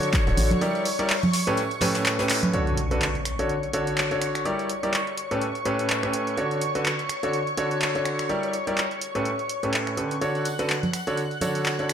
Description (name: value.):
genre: piano house.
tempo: 125 BPM.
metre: 4/4.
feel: swing 57% on 16ths.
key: D major.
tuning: A4 = 442 Hz.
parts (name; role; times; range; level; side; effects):
analog string pad; sustained chords; 0.0-11.9 s; C#5 to F#6; -30 LUFS; left 2 dB; ensemble chorus, sidechain pumping.
clear concert grand piano; riff; 0.0-11.9 s; A2 to D5; -26 LUFS; right 1 dB; sidechain pumping, tape echo.
punchy analog drum machine; drums; 0.0-11.9 s; finger snaps, handclaps, hi-hat; -28 LUFS; equal; none.
tambourine and congas; percussion; 0.0-2.5, 10.2-11.9 s; none; -28 LUFS; right 2 dB; none.
jazz brush drum kit; drums; 0.1-2.3 s; hi-hat, snare drum; -35 LUFS; left 3 dB; sidechain pumping on hats, high-pass filter on hats, high-pass filter on snare, high-pass filter on room.
organ-like FM bass; bass; 0.3-0.5 s; D1 to A1; -23 LUFS; equal; tube saturation, sidechain pumping.
impact; sound effects; 2.5-4.5 s; none; -30 LUFS; equal; none.
room: moderate plate reverb, RT60 1.1 s, small room ambience.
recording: dreamy mix soaked in reverb.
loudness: -22 LUFS.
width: side -8 dB against mid.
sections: 0.0-2.5 A section; 2.5-11.9 B section.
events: drum fill 2.3; band accent 2.3; impact 2.5-4.5.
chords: 0.0 Dmaj7; 0.6 Gm6; 1.3 A9; 2.5 Dmaj7; 4.5 Gm6; 5.2 A9; 6.4 Dmaj7; 8.3 Gm6; 9.0 A9; 10.2 Dmaj7.